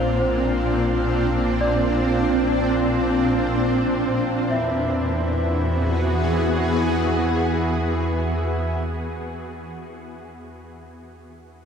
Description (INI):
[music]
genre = ambient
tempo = free time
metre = none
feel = none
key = unclear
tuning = A4 = 440 Hz
[part]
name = shimmering ambient pad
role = sustained chords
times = 0.0-8.7 s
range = A#2 to G#4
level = -22 LUFS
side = equal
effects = chorus, built-in reverb, shimmer reverb
[part]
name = celesta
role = arpeggios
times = 0.0-10.5 s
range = C4 to E5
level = -30 LUFS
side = right 1 dB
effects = diffuse ambient delay, shimmer reverb
[part]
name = deep rumbling drone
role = bass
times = 0.0-8.7 s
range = A#1 to E2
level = -27 LUFS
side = equal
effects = built-in reverb
[part]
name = pedal harmonium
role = drone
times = 0.0-8.8 s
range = E3 to E#4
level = -30 LUFS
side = right 1 dB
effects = none
[part]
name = drifting glass-harmonics texture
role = texture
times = 0.0-4.5 s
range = E#4 to E#5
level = -33 LUFS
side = left 1 dB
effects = none
[sound]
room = wet huge ambient reverb, RT60 8.4 s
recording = cassette tape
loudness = -19 LUFS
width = side -7 dB against mid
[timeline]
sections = 0.0-4.5 A section; 4.5-8.0 B section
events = none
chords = 0.0 A#; 4.5 E7